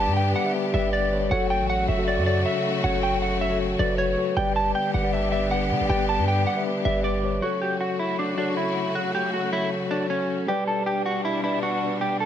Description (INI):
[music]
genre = hip hop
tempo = 157 BPM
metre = 4/4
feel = half-time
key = F# phrygian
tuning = A4 = 440 Hz
[part]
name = electric guitar at the edge of break-up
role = melody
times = 0.0-12.3 s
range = C#4 to A5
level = -26 LUFS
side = right 1 dB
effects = analog chorus, ping-pong delay
[part]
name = mellow tine electric piano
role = accompaniment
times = 0.0-12.3 s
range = F#3 to E5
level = -26 LUFS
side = left 3 dB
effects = medium stereo tremolo
[part]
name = clear symphonic string section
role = sustained chords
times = 0.0-12.3 s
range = B2 to G4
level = -30 LUFS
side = equal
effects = none
[part]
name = warm 808-style bass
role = bass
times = 0.0-7.4 s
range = F#1 to D3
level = -26 LUFS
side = right 1 dB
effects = none
[sound]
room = light reverb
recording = nothing above 10.3 kHz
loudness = -22 LUFS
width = side -10 dB against mid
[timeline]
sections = 0.0-7.4 A section; 7.4-12.3 B section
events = none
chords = 0.0 G; 1.3 F#m; 4.4 G; 7.4 F#m; 10.5 G